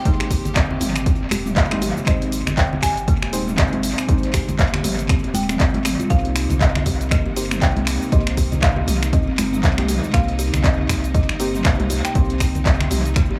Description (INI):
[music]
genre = afro house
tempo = 119 BPM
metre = 4/4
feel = swing 58% on 16ths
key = C minor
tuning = A4 = 439 Hz
[part]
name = marimba with medium hard mallets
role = melody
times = 0.0-13.4 s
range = Eb5 to Ab5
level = -33 LUFS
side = equal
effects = dub echo
[part]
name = rich studio string section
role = sustained chords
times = 0.0-13.4 s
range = C3 to G4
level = -35 LUFS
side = equal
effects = sidechain pumping
[part]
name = deep mellow chord stab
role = stabs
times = 0.0-13.4 s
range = G3 to C5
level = -33 LUFS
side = equal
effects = chorus, sidechain pumping, tape echo
[part]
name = kalimba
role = arpeggios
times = 0.1-13.4 s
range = G3 to G4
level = -30 LUFS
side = equal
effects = sidechain pumping, dub echo
[part]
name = warm sub bass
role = bass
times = 0.1-13.4 s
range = Eb1 to C2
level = -27 LUFS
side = equal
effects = sidechain pumping
[part]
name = deep house drum kit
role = drums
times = 0.1-13.3 s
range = finger snaps, handclaps, hi-hat, shaker, toms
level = -26 LUFS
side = equal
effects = tape echo
[part]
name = electronic kick drum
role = drums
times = 0.1-13.3 s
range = none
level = -21 LUFS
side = equal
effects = none
[part]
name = congas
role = percussion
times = 0.1-13.4 s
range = none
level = -31 LUFS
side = equal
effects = tape echo
[sound]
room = light reverb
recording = echo-heavy mix, small room ambience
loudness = -19 LUFS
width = mono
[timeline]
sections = 0.0-13.4 A section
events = none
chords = 0.0 Abmaj7; 6.1 Cm7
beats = | 0.05 0.56 1.06 1.57 | 2.07 2.57 3.08 3.58 | 4.09 4.59 5.09 5.60 | 6.10 6.61 7.11 7.62 | 8.12 8.62 9.13 9.63 | 10.14 10.64 11.14 11.65 | 12.15 12.66 13.16